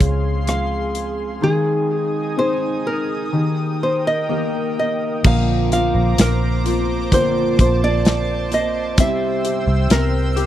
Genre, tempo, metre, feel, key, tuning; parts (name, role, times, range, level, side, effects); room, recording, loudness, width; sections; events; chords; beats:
pop ballad; 64 BPM; 4/4; straight; Bb major from 5.2 s; A4 = 439 Hz
nylon-string guitar; melody; 0.0-10.5 s; Ab4 to F5; -22 LUFS; equal; tape echo
felt-muted upright piano; accompaniment; 0.0-10.5 s; Db3 to Ab4; -25 LUFS; left 8 dB
airy breathy pad; sustained chords; 0.0-10.5 s; Eb4 to E6; -27 LUFS; equal; chorus
fingerpicked steel-string acoustic guitar; arpeggios; 0.0-10.5 s; Bb2 to Ab4; -26 LUFS; right 8 dB
vintage muted fingered electric bass; bass; 0.0-10.5 s; Bb1 to Db2; -20 LUFS; equal
modern studio drum kit; drums; 0.0-10.5 s; crash cymbal, hi-hat, kick drum, rim click, snare drum; -17 LUFS; equal
studio reverb; dry, close 1970s-style studio recording; -16 LUFS; side -12 dB against mid
0.0-5.2 A section; 5.2-10.5 B section
0.0 Dbmaj7; 1.4 Ab/Eb; 3.3 Eb; 5.2 Bbadd9; 9.0 C
0.48 | 1.42 2.37 3.33 4.29 | 5.25 6.18 7.12 8.05 | 8.98 9.90